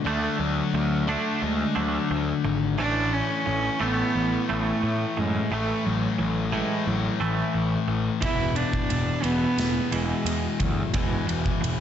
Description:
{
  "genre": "quiet-loud alternative rock",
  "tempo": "88 BPM",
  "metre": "4/4",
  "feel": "straight",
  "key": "unclear",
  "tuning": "A4 = 441 Hz",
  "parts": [
    { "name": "rich cello", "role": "melody", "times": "0.0-11.8 s", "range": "E3 to E4", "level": "-28 LUFS", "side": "right 3 dB", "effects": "slapback echo" },
    { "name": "twangy electric guitar", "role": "arpeggios", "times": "0.0-11.8 s", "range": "E2 to D4", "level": "-31 LUFS", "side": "right 4 dB", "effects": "tremolo, slapback echo" },
    { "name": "distorted electric guitar", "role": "riff", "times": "0.0-11.8 s", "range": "E2 to D4", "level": "-28 LUFS", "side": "left 8 dB", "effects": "distortion, slapback echo" },
    { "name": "fuzz picked electric bass", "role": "bass", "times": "0.1-11.8 s", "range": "E1 to A2", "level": "-29 LUFS", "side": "equal", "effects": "overdrive" },
    { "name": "big rock drum kit", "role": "drums", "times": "8.2-11.8 s", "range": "kick drum, ride cymbal, snare drum", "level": "-29 LUFS", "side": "equal", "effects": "none" }
  ],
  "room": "moderate lush hall reverb, RT60 2.3 s",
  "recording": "big arena sound, nothing above 7.9 kHz",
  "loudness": "-22 LUFS",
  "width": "side -9 dB against mid",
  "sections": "0.0-11.8 A section",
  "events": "none",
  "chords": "0.0 D; 2.8 A5; 8.2 E"
}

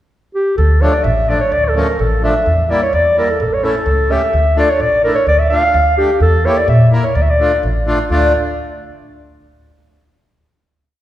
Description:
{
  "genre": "klezmer",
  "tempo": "128 BPM",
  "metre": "2/4",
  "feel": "straight",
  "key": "D harmonic minor",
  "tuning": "A4 = 442 Hz",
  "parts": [
    { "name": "mellow clarinet", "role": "melody", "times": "0.3-8.3 s", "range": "G4 to F5", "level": "-14 LUFS", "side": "equal", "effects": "none" },
    { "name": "upright bass", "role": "bass", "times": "0.6-8.3 s", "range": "A1 to Bb2", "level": "-15 LUFS", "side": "equal", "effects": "none" },
    { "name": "accordion", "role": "accompaniment", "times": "0.8-8.3 s", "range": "F3 to Bb4", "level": "-20 LUFS", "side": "left 1 dB", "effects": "none" }
  ],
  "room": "wet recital hall reverb, RT60 1.9 s",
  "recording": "heard from further back in the room",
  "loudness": "-11 LUFS",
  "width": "side -13 dB against mid",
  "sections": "0.0-0.6 pickup bar; 0.6-8.1 A section; 8.1-9.1 final chord",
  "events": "none",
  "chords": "0.0 N.C.; 0.6 Dm; 2.5 Edim; 3.4 A; 4.3 Dm; 6.2 Edim; 7.2 Dm"
}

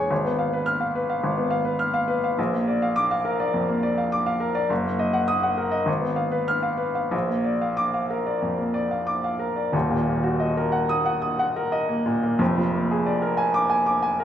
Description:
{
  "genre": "classical, romantic character piece for solo piano",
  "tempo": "88-108 BPM",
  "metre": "4/4",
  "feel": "rubato",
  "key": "Eb minor",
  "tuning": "A4 = 440 Hz",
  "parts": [
    { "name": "bright upright piano", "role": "solo", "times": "0.0-14.2 s", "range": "Eb1 to F6", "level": "-21 LUFS", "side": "equal", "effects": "none" }
  ],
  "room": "wet recital hall reverb, RT60 1.6 s",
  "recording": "minimal, uncompressed stereo recording",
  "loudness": "-21 LUFS",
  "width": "side -10 dB against mid",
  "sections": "0.0-9.7 A section; 9.7-14.2 B section",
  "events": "none",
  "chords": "0.1 Fdim/Ab; 2.4 Bb; 4.7 Ebm/Gb; 5.9 Fdim/Ab; 7.1 Bb; 9.7 Ebm; 12.4 Bb7/F"
}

